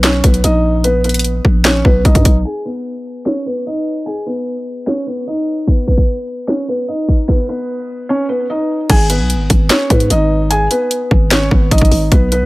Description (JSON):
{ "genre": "hip hop, trap", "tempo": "149 BPM", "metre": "4/4", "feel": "half-time", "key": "G# minor", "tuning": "A4 = 440 Hz", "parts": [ { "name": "felt-muted upright piano", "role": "melody", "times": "0.0-12.5 s", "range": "B3 to G#5", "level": "-17 LUFS", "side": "equal", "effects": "tape echo" }, { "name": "growling 808-style bass", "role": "bass", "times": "0.0-2.4, 8.9-12.5 s", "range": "G#1 to G#2", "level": "-14 LUFS", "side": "equal", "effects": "none" }, { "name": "trap drum kit", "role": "drums", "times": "0.0-12.4 s", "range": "crash cymbal, handclaps, hi-hat, kick drum, snare drum", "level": "-13 LUFS", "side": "equal", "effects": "overdrive" } ], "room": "little or no reverb", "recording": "low-pass filter", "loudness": "-12 LUFS", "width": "side -20 dB against mid", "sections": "0.0-2.5 A section; 2.5-8.9 B section; 8.9-12.5 A section", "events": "filter sweep 2.5-8.9; stop 7.3-8.9", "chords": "0.0 B; 2.5 G#m (rootless); 5.7 B; 8.9 G#m", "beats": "0.04 0.44 | 0.84 1.25 1.65 2.05 | 2.45 2.85 3.26 3.66 | 4.06 4.47 4.87 5.27 | 5.67 6.08 6.48 6.88 | 7.29 7.69 8.09 8.49 | 8.90 9.30 9.70 10.10 | 10.51 10.91 11.31 11.71 | 12.12" }